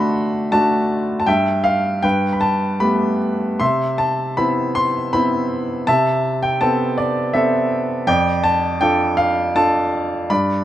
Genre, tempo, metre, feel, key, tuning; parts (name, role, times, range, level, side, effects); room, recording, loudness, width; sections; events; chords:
classical, lyrical solo piano; 81 BPM; 3/4; rubato; A4 = 440 Hz
clear baby grand piano; solo; 0.0-10.6 s; F2 to C6; -16 LUFS; equal
light reverb; close, detailed microphones; -16 LUFS; side -12 dB against mid
0.0-10.6 A section
0.0 D; 1.3 Em/G; 2.0 Gadd9; 3.6 Cmaj7; 5.9 Amadd9/C; 8.1 F6